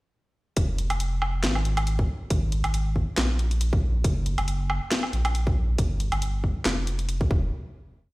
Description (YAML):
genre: deep dubstep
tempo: 138 BPM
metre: 4/4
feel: swing 55% on 16ths, half-time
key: unclear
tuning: A4 = 439 Hz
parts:
  - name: saturated sub bass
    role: bass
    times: 0.6-7.5 s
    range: F1 to C2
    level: -25 LUFS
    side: equal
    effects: none
  - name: electronic kick drum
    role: drums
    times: 0.6-7.4 s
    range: none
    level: -24 LUFS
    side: equal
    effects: none
  - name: garage drum kit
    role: drums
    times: 0.6-7.2 s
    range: handclaps, hi-hat, snare drum, woodblock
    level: -28 LUFS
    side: equal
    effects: none
room: digital ambience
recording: played on a big sound system in a bare room, stone room reverb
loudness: -23 LUFS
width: side -21 dB against mid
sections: 0.6-7.5 drop; 7.5-8.1 final hit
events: drop 0.6-7.5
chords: none